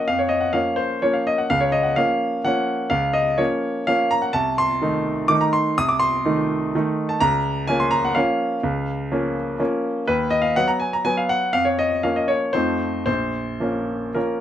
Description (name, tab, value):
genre	classical, piano waltz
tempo	108-133 BPM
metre	3/4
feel	rubato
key	Bb minor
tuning	A4 = 440 Hz
part	bright concert grand piano	solo	0.0-14.4 s	Bb1 to Eb6	-19 LUFS	equal	none
room	light reverb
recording	none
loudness	-19 LUFS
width	side -10 dB against mid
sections	0.0-14.4 A section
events	none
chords	0.0 Bbm; 1.5 Bbm/Db; 4.3 Adim/C; 7.2 Bbm/Db; 10.1 B/D#; 11.5 Bbm/F; 12.5 F7; 13.1 Bbm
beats	| 0.08 0.54 1.03 | 1.50 1.96 2.45 | 2.92 3.39 3.88 | 4.35 4.82 5.30 | 5.78 6.25 6.73 | 7.20 7.67 8.15 | 8.63 9.10 9.60 | 10.09 10.57 11.06 | 11.55 12.03 12.54 | 13.07 13.61 14.16